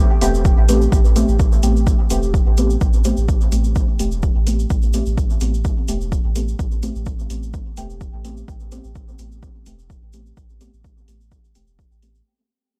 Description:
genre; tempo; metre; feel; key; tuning
dub techno; 127 BPM; 4/4; swing 54% on 16ths; A minor; A4 = 440 Hz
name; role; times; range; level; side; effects
soft dub sub bass; bass; 0.0-12.2 s; E1 to A1; -23 LUFS; equal; sidechain pumping
deep mellow chord stab; stabs; 0.2-12.2 s; A3 to G4; -26 LUFS; equal; chorus, phaser, sidechain pumping, dub echo
electronic hi-hat; drums; 0.2-12.1 s; none; -34 LUFS; equal; overdrive
cabasa; percussion; 0.2-12.2 s; none; -38 LUFS; equal; none
electronic kick drum; drums; 0.5-11.9 s; none; -21 LUFS; equal; overdrive
room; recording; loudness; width
digital ambience; dark, warm production; -18 LUFS; mono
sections
0.0-12.3 A section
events
fade-out 0.0-12.3; filter sweep on synth stab 0.0-12.3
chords
0.0 Am9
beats
0.45 | 0.92 1.40 1.87 2.34 | 2.81 3.29 3.76 4.23 | 4.70 5.17 5.65 6.12 | 6.59 7.06 7.54 8.01 | 8.48 8.95 9.43 9.90 | 10.37 10.84 11.32 11.79

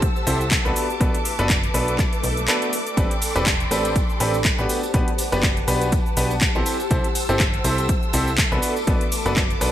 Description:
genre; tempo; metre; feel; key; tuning
piano house; 122 BPM; 4/4; swing 56% on 16ths; unclear; A4 = 442 Hz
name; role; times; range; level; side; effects
muted symphonic violin section; sustained chords; 0.0-9.7 s; A4 to E6; -30 LUFS; left 1 dB; sidechain pumping
plucky analog bass; bass; 0.0-9.7 s; E1 to C2; -25 LUFS; equal; sidechain pumping
electronic kick drum; drums; 0.0-9.5 s; none; -22 LUFS; equal; overdrive
house drum kit; drums; 0.0-9.7 s; handclaps, hi-hat, shaker; -25 LUFS; equal; overdrive, gated reverb
granular cloud pad; texture; 0.0-9.7 s; G4 to C6; -30 LUFS; equal; built-in reverb, lush chorus, sidechain pumping
bright baby grand piano; riff; 0.3-9.7 s; B3 to C5; -25 LUFS; equal; sidechain pumping, digital delay
swell; sound effects; 2.2-3.0 s; none; -33 LUFS; equal; none
tambourine; percussion; 3.0-9.7 s; none; -36 LUFS; right 1 dB; none
room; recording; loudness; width
light reverb; bright 1980s-style digital production; -18 LUFS; side -12 dB against mid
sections
0.0-9.7 A section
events
swell 2.2-3.0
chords
0.0 C6; 0.8 Bm7; 3.0 Am11; 4.7 Gmaj7; 6.7 C6; 8.6 Bm7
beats
0.02 0.51 | 1.01 1.50 1.99 2.48 | 2.97 3.46 3.96 4.45 | 4.94 5.43 5.92 6.42 | 6.91 7.40 7.89 8.38 | 8.88 9.37

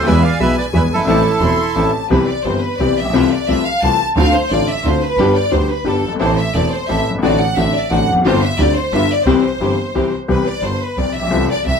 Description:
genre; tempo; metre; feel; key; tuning
tango; 176 BPM; 3/4; rubato; C major; A4 = 441 Hz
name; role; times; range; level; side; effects
bandoneon; melody; 0.0-1.9 s; E4 to F5; -18 LUFS; right 4 dB; none
bright upright piano; accompaniment; 0.0-11.8 s; E1 to A4; -17 LUFS; left 4 dB; none
clear double bass; bass; 0.0-11.8 s; E1 to E2; -19 LUFS; right 2 dB; none
clear studio violin section; second line; 0.1-11.8 s; A4 to C6; -19 LUFS; left 1 dB; none
bright chamber string section; stabs; 0.1-10.1 s; G#3 to A4; -25 LUFS; right 3 dB; none
room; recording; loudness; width
wet club reverb, RT60 0.6 s; heard from further back in the room; -13 LUFS; side -6 dB against mid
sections
0.0-2.1 A section; 2.1-10.3 B section; 10.3-11.8 B section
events
violin section solo 2.1-10.3, 10.3-11.8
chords
0.1 E; 1.1 Am; 2.1 Cmaj7; 3.1 Fmaj7/C; 4.2 Dm7; 5.2 G; 6.2 Am; 7.2 D7/A; 8.2 G7sus4; 8.9 G7; 9.3 C; 10.3 Cmaj7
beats
| 0.06 0.40 0.73 | 1.07 1.42 1.76 | 2.11 2.46 2.80 | 3.14 3.48 3.83 | 4.17 4.50 4.84 | 5.18 5.52 5.86 | 6.21 6.55 6.89 | 7.23 7.57 7.91 | 8.24 8.58 8.92 | 9.26 9.61 9.95 | 10.30 10.64 10.98 | 11.32 11.66

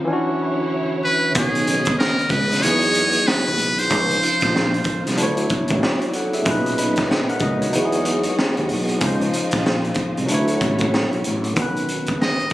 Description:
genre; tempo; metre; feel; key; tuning
R&B, neo-soul; 94 BPM; 4/4; swing 60% on 16ths; B major; A4 = 438 Hz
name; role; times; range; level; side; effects
barky tine electric piano; accompaniment; 0.0-12.5 s; A#2 to B5; -23 LUFS; left 1 dB; none
dark studio string section; sustained chords; 0.0-11.6 s; C#3 to D#5; -29 LUFS; right 1 dB; none
trumpet with metal mute; melody; 1.0-5.1, 12.2-12.5 s; G#4 to D#5; -20 LUFS; equal; slapback echo
crunchy breakbeat drum kit; drums; 1.3-12.5 s; hi-hat, kick drum, snare drum; -22 LUFS; equal; none
sustaining fretless electric bass; bass; 1.4-12.5 s; A1 to E2; -23 LUFS; right 1 dB; ensemble chorus
room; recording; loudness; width
little or no reverb; recorded on a phone in the room, club reverb; -17 LUFS; side -15 dB against mid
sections
0.0-11.6 A section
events
none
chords
0.1 Dmaj9; 1.4 Badd9; 2.6 Emaj9; 3.9 C#maj9; 5.2 Dmaj9; 6.5 Bmaj9; 7.7 Emaj9; 9.0 C#maj9; 10.3 Dmaj9; 11.6 Badd9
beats
0.08 0.71 | 1.35 1.99 2.63 3.27 | 3.91 4.54 5.18 5.82 | 6.46 7.10 7.74 8.38 | 9.01 9.65 10.29 10.93 | 11.57 12.20

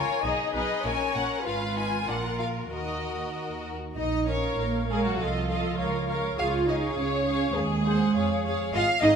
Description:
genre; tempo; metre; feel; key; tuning
quick classical-period movement for string orchestra; 93-102 BPM; 2/4; rubato; Eb minor, Bb minor from 4.0 s; A4 = 440 Hz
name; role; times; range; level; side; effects
rich studio violin section; melody; 0.0-9.1 s; Eb5 to Ab5; -34 LUFS; left 4 dB; none
rich chamber violin section; second line; 0.0-9.2 s; Db4 to F5; -30 LUFS; left 3 dB; none
rich chamber viola section; accompaniment; 0.0-9.1 s; F4 to Eb5; -31 LUFS; equal; none
dark chamber cello section; bass; 0.2-9.1 s; Ab2 to F4; -29 LUFS; right 4 dB; none
dark chamber double bass section; bass; 0.2-9.1 s; Ab1 to F2; -33 LUFS; right 2 dB; none
room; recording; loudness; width
moderate scoring stage reverb, RT60 1.8 s; minimal, uncompressed stereo recording; -25 LUFS; side -7 dB against mid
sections
0.0-4.0 A section; 4.0-9.2 B section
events
none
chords
0.2 Abm/Cb; 0.8 Gb/Bb; 1.5 Fdim/Ab; 2.1 Bb5; 2.7 Ebm; 4.0 Bbm; 5.2 F7/C; 5.8 Bbm/Db; 6.4 Db; 7.6 Ab7/Eb; 8.1 Db/F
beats
| 0.24 0.85 | 1.45 2.07 | 2.70 3.34 | 3.97 4.58 | 5.19 5.79 | 6.38 6.97 | 7.56 8.14 | 8.73

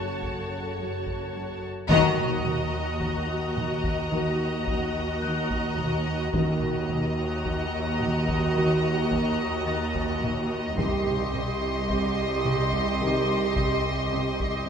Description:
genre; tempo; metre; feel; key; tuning
cinematic, suspense film score; 54 BPM; 4/4; straight; unclear; A4 = 444 Hz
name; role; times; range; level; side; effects
rich symphonic violin section; melody; 0.0-14.7 s; A5 to C6; -34 LUFS; left 3 dB; none
warm symphonic violin section; second line; 0.0-14.7 s; Db5 to Eb5; -32 LUFS; left 4 dB; none
rich symphonic viola section; accompaniment; 0.0-14.7 s; Gb4 to G4; -32 LUFS; right 2 dB; none
mellow French horn section; sustained chords; 0.0-13.4 s; Db3 to A4; -32 LUFS; equal; none
clear symphonic double bass section; bass; 0.0-14.7 s; Gb1 to Eb2; -33 LUFS; right 1 dB; none
rich symphonic cello section; bass; 0.0-14.7 s; C2 to Gb2; -32 LUFS; right 2 dB; none
concert harp; texture; 0.0-13.0 s; Gb6 to Eb7; -40 LUFS; left 2 dB; none
warm symphonic cello section; riff; 0.2-14.7 s; Gb2 to Eb3; -32 LUFS; right 1 dB; none
taiko ensemble; drums; 0.2-14.7 s; none; -34 LUFS; equal; none
timpani; percussion; 1.9-3.5 s; Eb3; -31 LUFS; left 3 dB; none
room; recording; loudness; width
wet concert hall reverb, RT60 2.4 s; minimal, uncompressed stereo recording; -24 LUFS; side -7 dB against mid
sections
0.0-1.9 A section; 1.9-14.7 A section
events
band accent 1.9-3.0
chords
0.0 Gbm; 1.9 Ebm; 10.8 Cm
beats
0.78 | 1.90 3.01 4.12 5.23 | 6.34 7.45 8.56 9.67 | 10.78 11.89 13.01 14.12

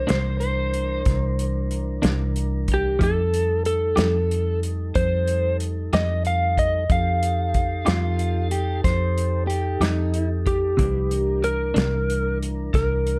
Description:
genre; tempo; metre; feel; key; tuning
slow blues; 62 BPM (dotted quarters); 12/8; straight; unclear; A4 = 441 Hz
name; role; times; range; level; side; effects
electric slide guitar; melody; 0.0-13.2 s; G4 to F5; -26 LUFS; equal; none
mellow tonewheel organ; sustained chords; 0.0-13.2 s; E3 to B4; -36 LUFS; equal; slow rotary speaker
vintage muted fingered electric bass; bass; 0.0-13.2 s; C2 to F2; -26 LUFS; equal; none
electric guitar at the edge of break-up; second line; 0.1-10.3 s; Eb4 to C5; -30 LUFS; equal; none
clean electric guitar; accompaniment; 0.1-12.0 s; C3 to G4; -30 LUFS; equal; tremolo
warm soul drum kit; drums; 0.1-13.2 s; hi-hat, kick drum, snare drum; -27 LUFS; equal; none
room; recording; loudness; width
light reverb; dark, warm production; -23 LUFS; mono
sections
0.0-13.2 A section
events
none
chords
0.0 C9; 3.0 F9; 10.8 C9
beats
0.08 1.05 2.03 | 3.00 3.97 4.95 5.92 | 6.89 7.87 8.84 9.81 | 10.78 11.76 12.73

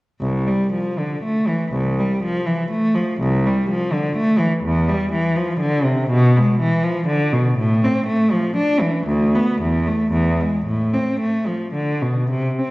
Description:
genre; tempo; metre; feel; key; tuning
classical, baroque-style suite movement for unaccompanied cello; 104-127 BPM; 3/4; rubato; C major, A minor from 6.1 s; A4 = 441 Hz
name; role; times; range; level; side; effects
rich cello; solo; 0.2-12.7 s; C2 to D4; -17 LUFS; equal; none
room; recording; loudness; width
wet recital hall reverb, RT60 1.4 s; worn, warbling old tape, cassette tape, warbly pitch drift; -17 LUFS; side -20 dB against mid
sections
0.2-12.3 A section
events
none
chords
none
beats
| 0.20 0.74 1.24 | 1.73 2.22 2.70 | 3.20 3.70 4.17 | 4.65 5.12 5.60 | 6.10 6.61 7.09 | 7.58 8.08 8.57 | 9.09 9.62 10.13 | 10.66 11.20 11.74 | 12.30

